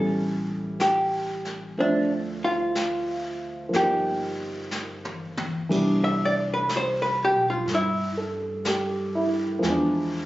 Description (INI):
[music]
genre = jazz ballad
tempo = 61 BPM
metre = 4/4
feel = swing 66% on 8ths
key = C major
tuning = A4 = 437 Hz
[part]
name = archtop guitar, miked and amplified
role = melody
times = 0.0-8.1 s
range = D4 to E5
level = -24 LUFS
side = equal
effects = none
[part]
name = warm grand piano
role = accompaniment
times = 0.0-10.3 s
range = E3 to E5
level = -27 LUFS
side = right 1 dB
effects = none
[part]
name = upright bass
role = bass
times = 0.0-10.3 s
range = G1 to G2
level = -34 LUFS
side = equal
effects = none
[part]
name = jazz brush drum kit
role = drums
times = 0.8-10.3 s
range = brushed snare drum, hi-hat, kick drum, ride cymbal, snare drum, toms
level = -34 LUFS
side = left 1 dB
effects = none
[sound]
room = moderate large studio reverb, RT60 1.2 s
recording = recorded on a phone in the room, club reverb, compression, nothing above 7.7 kHz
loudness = -23 LUFS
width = side -16 dB against mid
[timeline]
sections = 0.0-5.7 A section; 5.7-10.3 B section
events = drum fill 4.7-5.7; hollow-body jazz guitar solo 5.7-10.3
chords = 0.0 A7; 1.8 Dm7; 3.7 G7alt; 5.7 Cmaj9; 9.6 E7b9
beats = 0.80 | 1.78 2.76 3.74 4.72 | 5.71 6.69 7.67 8.65 | 9.63